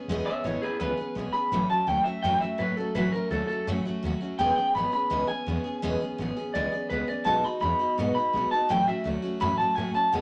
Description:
rockabilly; 167 BPM; 4/4; straight; E major; A4 = 440 Hz
picked steel-string acoustic guitar; accompaniment; 0.0-10.2 s; A2 to G#4; -32 LUFS; equal
upright bass; bass; 0.1-10.2 s; E1 to A2; -36 LUFS; equal
electric guitar through a small old amp; melody; 0.3-10.2 s; E4 to B5; -28 LUFS; equal
wet studio reverb, RT60 0.5 s; nothing above 11.0 kHz; -27 LUFS; mono
0.0-10.2 A section
clean electric guitar solo 0.0-10.2
0.0 E6; 1.5 A6; 4.4 E6; 7.3 B6; 8.7 A6

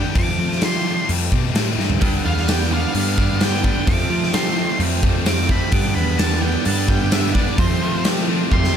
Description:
quiet-loud alternative rock; 129 BPM; 4/4; straight; A4 = 440 Hz
octave-fuzz lead guitar; melody; 0.0-8.7 s; C5 to D6; -26 LUFS; equal; distortion
twangy electric guitar; arpeggios; 0.0-8.8 s; F3 to G4; -29 LUFS; right 2 dB; ensemble chorus
tight distorted guitar; riff; 0.0-8.8 s; F2 to D4; -26 LUFS; left 13 dB; distortion
growling picked electric bass; bass; 0.2-8.8 s; E2 to F3; -22 LUFS; equal; overdrive
big rock drum kit; drums; 0.2-8.7 s; hi-hat, kick drum, snare drum, toms; -20 LUFS; equal
overdriven electric guitar; riff; 2.0-8.8 s; F2 to D4; -26 LUFS; right 15 dB
studio reverb; -16 LUFS; side -8 dB against mid
0.0-8.8 A section
lead electric guitar solo 0.0-8.8; drum fill 1.8, 8.5
0.1 Fadd9; 2.0 G; 3.9 Fadd9; 5.7 G; 7.6 Fadd9

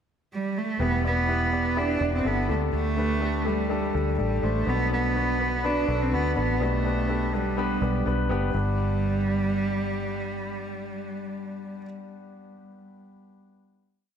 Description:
piano-driven pop; 124 BPM; 4/4; straight; G major; A4 = 439 Hz
warm cello; melody; 0.3-11.8 s; G3 to D4; -27 LUFS; right 3 dB
clear concert grand piano; accompaniment; 0.8-14.2 s; G2 to D5; -30 LUFS; left 4 dB
vintage muted fingered electric bass; bass; 0.8-11.8 s; E1 to D2; -28 LUFS; equal
wet plate reverb, RT60 3.4 s; dreamy mix soaked in reverb; -23 LUFS; side -8 dB against mid
0.0-0.8 pickup bar; 0.8-8.5 verse; 8.5-12.4 final chord
0.0 N.C.; 0.8 Em; 2.5 Dsus4; 4.7 Bm7; 6.6 G/B; 8.5 G

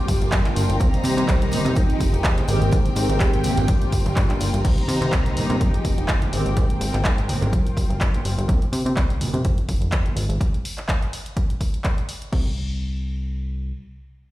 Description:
filtered disco house; 125 BPM; 4/4; swing 55% on 16ths; C minor; A4 = 440 Hz
mellow synth brass; accompaniment; 0.0-6.8 s; Eb3 to G4; -26 LUFS; equal; chorus, phaser, sidechain pumping, low-pass filter
rich chamber violin section; sustained chords; 0.0-8.5 s; Ab3 to Bb5; -30 LUFS; left 2 dB; sidechain pumping, low-pass filter
plucky analog bass; bass; 0.1-13.7 s; F1 to C3; -23 LUFS; equal; sidechain pumping, low-pass filter
electronic kick drum; drums; 0.1-12.4 s; -21 LUFS; equal
punchy analog drum machine; drums; 0.1-12.4 s; crash cymbal, handclaps, hi-hat; -30 LUFS; equal
congas and tambourine; percussion; 0.1-10.4 s; -31 LUFS; right 2 dB; sidechain pumping on perc, low-pass filter on perc
little or no reverb; played on a big sound system in a bare room, stone room reverb; -19 LUFS; side -16 dB against mid
0.0-4.6 A section; 4.6-12.3 B section; 12.3-14.3 C section
drop 0.0-4.6; filter sweep 4.6-12.3
0.0 Gm7; 0.8 Cm7; 1.8 Fm9; 2.5 Abmaj9; 3.7 Gm7; 4.6 Cm7; 5.6 Fm9; 6.3 Abmaj9; 7.5 Gm7; 8.5 N.C.

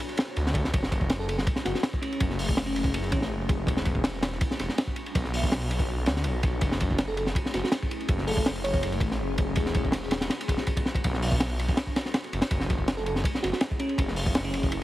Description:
drum and bass, jungle; 163 BPM; 4/4; straight; F# minor; A4 = 437 Hz
crunchy breakbeat drum kit; drums; 0.1-14.8 s; hi-hat, kick drum, ride cymbal, snare drum; -26 LUFS; equal
detuned saw bass; bass; 0.4-14.8 s; E1 to D2; -30 LUFS; equal
bell-like FM electric piano; melody; 1.2-3.3, 7.1-9.0, 13.0-14.7 s; C#4 to C#5; -33 LUFS; right 1 dB; chorus, tremolo, dub echo
light reverb, small room ambience; heavily compressed radio sound, vinyl crackle; -25 LUFS; side -15 dB against mid
0.7-14.8 A section
drop 0.7-14.8
0.0 Bm9 (rootless); 0.7 F#m9; 3.7 Em9; 5.1 Bm9; 6.6 F#m9; 9.6 Em9; 11.0 Bm9; 12.5 F#m9

